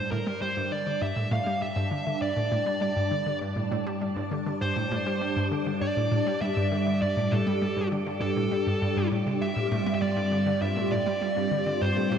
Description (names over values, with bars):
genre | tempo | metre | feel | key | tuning
ambient, sequencer-driven space music | 100 BPM | 4/4 | straight | unclear | A4 = 440 Hz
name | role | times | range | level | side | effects
dark smooth lead guitar | melody | 0.0-12.2 s | A4 to F5 | -30 LUFS | right 1 dB | overdrive, tape echo
phased string machine | sustained chords | 0.0-12.2 s | G2 to A5 | -29 LUFS | equal | ensemble chorus, phaser
analog pluck | riff | 0.0-12.2 s | G2 to G3 | -30 LUFS | equal | chorus, cassette tape, tape echo
wind-like tuned noise texture | texture | 0.6-12.2 s | D5 | -41 LUFS | right 4 dB | built-in reverb, analog chorus
room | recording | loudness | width
wet plate reverb, RT60 2.6 s | dreamy mix soaked in reverb | -25 LUFS | side -8 dB against mid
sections
0.0-12.2 A section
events
none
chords
0.0 Gsus2